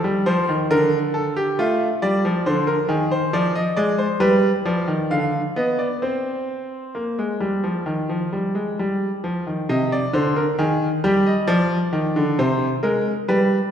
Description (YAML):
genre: classical, baroque-style two-part invention for grand piano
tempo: 67 BPM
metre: 4/4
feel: straight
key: C minor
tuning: A4 = 440 Hz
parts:
  - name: bright grand piano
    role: solo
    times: 0.0-13.6 s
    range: C3 to F5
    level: -18 LUFS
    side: equal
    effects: none
room: wet concert hall reverb, RT60 1.8 s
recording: heard from further back in the room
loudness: -18 LUFS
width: side -8 dB against mid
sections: 0.0-9.7 A section; 9.7-13.7 B section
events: none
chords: 0.0 F7; 0.7 Bb/D; 2.5 Dm7b5; 4.2 G7; 6.0 Cm; 11.5 Fm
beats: 0.69 1.57 | 2.46 3.33 4.22 5.12 | 6.03 6.95 7.87 8.79 | 9.70 10.59 11.49 12.38 | 13.27